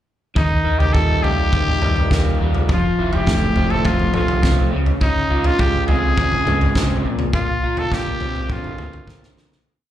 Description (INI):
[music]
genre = indie rock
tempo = 103 BPM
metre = 4/4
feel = straight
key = unclear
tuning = A4 = 442 Hz
[part]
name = growling trumpet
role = melody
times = 0.4-9.4 s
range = Eb4 to A4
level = -23 LUFS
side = equal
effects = slapback echo, digital delay
[part]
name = crunchy overdriven guitar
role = riff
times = 0.4-9.7 s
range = Bb2 to F4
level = -22 LUFS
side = equal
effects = slapback echo
[part]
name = deep dub fingered electric bass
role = bass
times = 0.4-9.6 s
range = F1 to Eb2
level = -22 LUFS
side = equal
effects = none
[part]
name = loose indie drum kit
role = drums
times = 0.4-9.7 s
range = kick drum, snare drum, toms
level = -20 LUFS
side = equal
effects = none
[sound]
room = little or no reverb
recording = live gig heard through the venue's PA, club reverb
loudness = -16 LUFS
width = side -12 dB against mid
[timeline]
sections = 0.4-9.7 verse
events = fade-out 7.3-9.7; drum fill 9.1-9.7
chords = 0.4 Eb; 2.7 Fmaj7; 4.7 Dbmaj7; 7.0 Bbadd9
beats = | 0.36 0.94 1.53 2.11 | 2.69 3.27 3.85 4.43 | 5.01 5.59 6.17 6.75 | 7.33 7.91 8.49 9.07